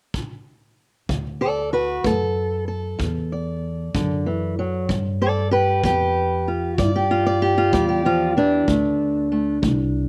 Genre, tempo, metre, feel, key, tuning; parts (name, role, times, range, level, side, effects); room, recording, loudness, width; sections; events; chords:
acoustic country blues, solo or duo; 63 BPM (dotted quarters); 12/8; straight; A4 = 436 Hz
kick drum; drums; 0.1-9.8 s; -30 LUFS; equal
fingerpicked steel-string acoustic guitar; melody; 1.1-10.1 s; F#2 to D5; -22 LUFS; equal
upright bass; bass; 1.1-10.1 s; C2 to G2; -28 LUFS; equal
little or no reverb; -21 LUFS; mono
0.0-1.1 A section; 1.1-10.1 B section
0.0 N.C.; 1.1 D; 4.9 G7; 8.7 D7